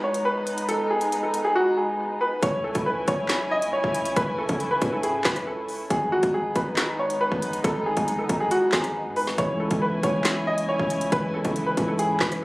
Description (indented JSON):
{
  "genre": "hip hop, drill",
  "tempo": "138 BPM",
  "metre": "4/4",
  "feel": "half-time",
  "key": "C# minor",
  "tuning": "A4 = 440 Hz",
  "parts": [
    { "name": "clear upright piano", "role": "melody", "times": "0.0-12.4 s", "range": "F#4 to D#5", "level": "-24 LUFS", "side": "equal", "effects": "ping-pong delay" },
    { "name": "muted studio string section", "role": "sustained chords", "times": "0.0-12.4 s", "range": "C#3 to G#5", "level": "-30 LUFS", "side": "equal", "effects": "none" },
    { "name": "drill drum kit", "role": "drums", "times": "0.1-12.4 s", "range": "handclaps, hi-hat, kick drum, rim click, snare drum", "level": "-26 LUFS", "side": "equal", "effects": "none" },
    { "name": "hard-hitting 808-style bass", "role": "bass", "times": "2.4-12.4 s", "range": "F#1 to C#3", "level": "-35 LUFS", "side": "equal", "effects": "none" },
    { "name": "bell-like tine electric piano", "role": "accompaniment", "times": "9.4-12.4 s", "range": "C#3 to E4", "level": "-28 LUFS", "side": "equal", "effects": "none" }
  ],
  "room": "moderate recital hall reverb, RT60 1.5 s",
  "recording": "recorded on a phone in the room, club reverb",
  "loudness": "-22 LUFS",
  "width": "side -21 dB against mid",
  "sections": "0.0-12.4 A section",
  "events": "break 0.0-2.4; drums muted 1.6-2.4",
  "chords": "0.0 G#m; 2.4 C#m; 5.9 G#m; 9.4 C#m",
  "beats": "0.25 | 0.69 1.12 1.56 1.99 | 2.43 2.86 3.30 3.73 | 4.17 4.60 5.04 5.47 | 5.90 6.34 6.77 7.21 | 7.64 8.08 8.51 8.95 | 9.38 9.82 10.25 10.69 | 11.12 11.56 11.99 12.43"
}